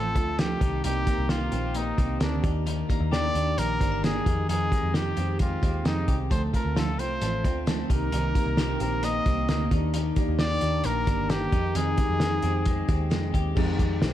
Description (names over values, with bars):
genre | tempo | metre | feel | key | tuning
jangly indie pop | 132 BPM | 4/4 | straight | unclear | A4 = 441 Hz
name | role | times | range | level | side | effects
clear trumpet | melody | 0.0-13.3 s | D4 to Eb5 | -30 LUFS | equal | digital delay
picked steel-string acoustic guitar | accompaniment | 0.0-14.1 s | F2 to G4 | -33 LUFS | right 9 dB | none
twelve-string electric guitar | arpeggios | 0.0-14.1 s | Eb3 to G4 | -32 LUFS | left 6 dB | none
vintage muted picked electric bass | bass | 0.0-14.1 s | G1 to F2 | -28 LUFS | equal | none
cloth-damped thuddy drum kit | drums | 0.2-14.1 s | crash cymbal, hi-hat, kick drum, snare drum | -27 LUFS | equal | none
warm upright piano | accompaniment | 13.5-14.1 s | Ab3 to G4 | -34 LUFS | left 10 dB | none
room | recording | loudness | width
little or no reverb | dark, warm production | -23 LUFS | side -12 dB against mid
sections
0.0-13.6 A section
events
none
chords
0.0 Dm7; 0.6 Cm7; 2.4 Ebmaj7; 4.3 Fm9; 6.3 Dm7; 7.9 Cm7; 9.7 Ebmaj7; 11.5 Fm9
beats
0.39 | 0.84 1.30 1.75 2.21 | 2.67 3.12 3.58 4.04 | 4.49 4.95 5.40 5.86 | 6.31 6.77 7.22 7.67 | 8.13 8.58 9.04 9.49 | 9.94 10.40 10.85 11.30 | 11.76 12.21 12.66 13.12 | 13.57 14.02